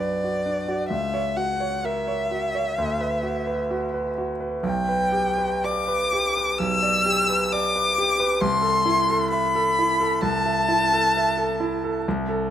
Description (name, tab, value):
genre	classical, romantic duo for violin and grand piano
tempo	65 BPM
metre	4/4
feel	rubato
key	unclear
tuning	A4 = 445 Hz
part	dark violin	melody	0.0-12.0 s	D5 to E6	-22 LUFS	left 2 dB	none
part	clear grand piano	accompaniment	0.0-12.5 s	B1 to E5	-24 LUFS	right 2 dB	none
room	light reverb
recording	close, detailed microphones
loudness	-20 LUFS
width	side -10 dB against mid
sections	0.0-12.5 A section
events	none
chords	0.0 Bm; 0.9 F#7/C#; 2.8 Bm/D; 4.6 G/B; 8.4 Am/C